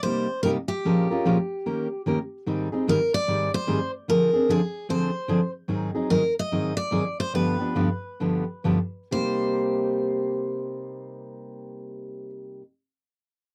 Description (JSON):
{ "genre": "jazz", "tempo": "127-149 BPM", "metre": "4/4", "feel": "swing 62% on 8ths", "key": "C minor", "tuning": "A4 = 440 Hz", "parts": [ { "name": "picked steel-string acoustic guitar", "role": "melody", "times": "0.0-12.3 s", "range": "G4 to Eb5", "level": "-30 LUFS", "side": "equal", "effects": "none" }, { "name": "picked steel-string acoustic guitar", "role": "accompaniment", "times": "0.0-12.6 s", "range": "G2 to Bb4", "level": "-27 LUFS", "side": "equal", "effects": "none" } ], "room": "moderate booth ambience, RT60 0.2 s", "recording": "dry, close 1970s-style studio recording", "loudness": "-25 LUFS", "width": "mono", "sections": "0.0-2.5 A section; 2.5-9.1 B section; 9.1-12.9 C section", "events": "slowing down 5.7-9.1", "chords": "0.0 Cm7; 0.8 Bbm7; 1.7 Eb7; 2.5 Abmaj7#11; 4.1 Dm7b5; 5.7 Ab7; 7.3 G7; 9.1 Cm7" }